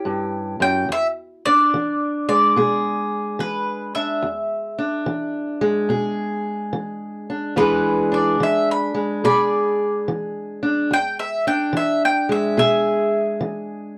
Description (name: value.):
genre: acoustic country blues, solo or duo.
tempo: 72 BPM.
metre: 4/4.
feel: swing 66% on 8ths.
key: E mixolydian.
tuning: A4 = 440 Hz.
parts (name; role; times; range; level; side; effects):
fingerpicked steel-string acoustic guitar; accompaniment; 0.0-14.0 s; E2 to G#4; -24 LUFS; equal; none.
mandolin; melody; 0.6-13.4 s; B4 to B5; -23 LUFS; equal; none.
room: little or no reverb.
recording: dry, close 1970s-style studio recording.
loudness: -21 LUFS.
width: mono.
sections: 0.0-7.6 A section; 7.6-14.0 B section.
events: mandolin solo 7.6-14.0.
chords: 0.0 A7 (rootless); 0.9 E7.